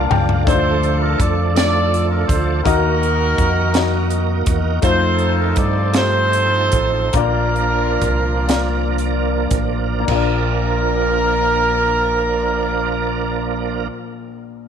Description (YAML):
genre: slow gospel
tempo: 34-55 BPM (dotted quarters)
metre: 6/8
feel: straight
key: Bb major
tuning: A4 = 442 Hz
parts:
  - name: warm horn section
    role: melody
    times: 0.0-13.9 s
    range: D4 to D5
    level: -20 LUFS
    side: right 1 dB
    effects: none
  - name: warm baby grand piano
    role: accompaniment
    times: 0.0-14.7 s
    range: Bb1 to A5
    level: -22 LUFS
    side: left 11 dB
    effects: none
  - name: bright tonewheel organ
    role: sustained chords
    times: 0.0-13.9 s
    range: F3 to Bb4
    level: -23 LUFS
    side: right 11 dB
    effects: fast rotary speaker, overdrive, chorus vibrato
  - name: deep dub fingered electric bass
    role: bass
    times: 0.0-13.9 s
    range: A1 to G2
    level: -21 LUFS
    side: right 1 dB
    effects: none
  - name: crisp fusion drum kit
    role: drums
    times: 0.1-10.4 s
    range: crash cymbal, hi-hat, kick drum, snare drum, toms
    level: -21 LUFS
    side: equal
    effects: none
room: light reverb, small room ambience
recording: 1960s-style stereo with parts hard left and right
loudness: -15 LUFS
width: side -8 dB against mid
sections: 0.5-10.1 A section; 10.1-14.7 B section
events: drum fill 0.0-0.5; grand piano fill 0.0-0.5; slowing down 4.8-10.1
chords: 0.5 Dm; 2.6 Ebm; 4.8 F7; 7.1 Bb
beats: | 0.47 1.56 | 2.65 3.74 | 4.83 5.95 | 7.14 8.48 | 10.08 11.86 | 13.64